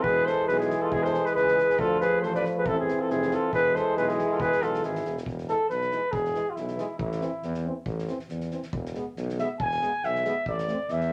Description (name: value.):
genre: balkan folk, Balkan brass band.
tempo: 138 BPM.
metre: 2/4.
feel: swing 55% on 16ths.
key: E phrygian dominant.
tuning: A4 = 440 Hz.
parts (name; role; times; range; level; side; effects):
mellow flugelhorn; melody; 0.0-5.2 s; G#4 to D5; -28 LUFS; equal; none.
dark trumpet; second line; 0.0-11.1 s; E4 to G#5; -32 LUFS; equal; none.
clear French horn; accompaniment; 0.0-10.8 s; G#3 to C4; -35 LUFS; equal; none.
warm euphonium; accompaniment; 0.0-11.1 s; E3 to A3; -36 LUFS; equal; none.
clear tuba; bass; 0.0-11.1 s; E1 to E2; -36 LUFS; equal; none.
soft-mallet drum kit; percussion; 0.0-11.1 s; kick drum, snare drum; -42 LUFS; equal; none.
room: wet studio reverb, RT60 0.7 s.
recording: none.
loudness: -27 LUFS.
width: mono.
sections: 0.0-5.3 A section; 5.3-11.1 B section.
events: trumpet solo 5.3-11.1.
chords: 0.0 E; 1.8 Dm; 2.7 Am; 3.5 E; 7.0 Am; 8.7 E; 10.5 Am.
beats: | 0.04 0.48 | 0.92 1.35 | 1.79 2.22 | 2.66 3.09 | 3.53 3.96 | 4.40 4.83 | 5.27 5.70 | 6.13 6.57 | 7.00 7.44 | 7.87 8.30 | 8.74 9.17 | 9.60 10.04 | 10.47 10.90.